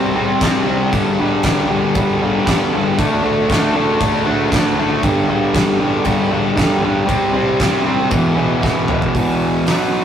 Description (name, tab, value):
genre	garage rock duo or trio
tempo	117 BPM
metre	4/4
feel	straight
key	unclear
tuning	A4 = 441 Hz
part	fuzz guitar	riff	0.0-10.0 s	E2 to D4	-15 LUFS	equal	distortion
part	oversized low-tuned drum kit	drums	0.4-9.8 s	crash cymbal, hi-hat, kick drum, snare drum, toms	-19 LUFS	equal	none
room	moderate studio reverb, RT60 0.6 s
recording	rough rehearsal-room recording, tube saturation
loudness	-14 LUFS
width	side -9 dB against mid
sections	0.0-9.1 A section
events	drum fill 8.6-9.1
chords	0.0 C5; 0.9 G5; 3.0 D5; 5.0 G5; 7.1 C5; 8.1 E5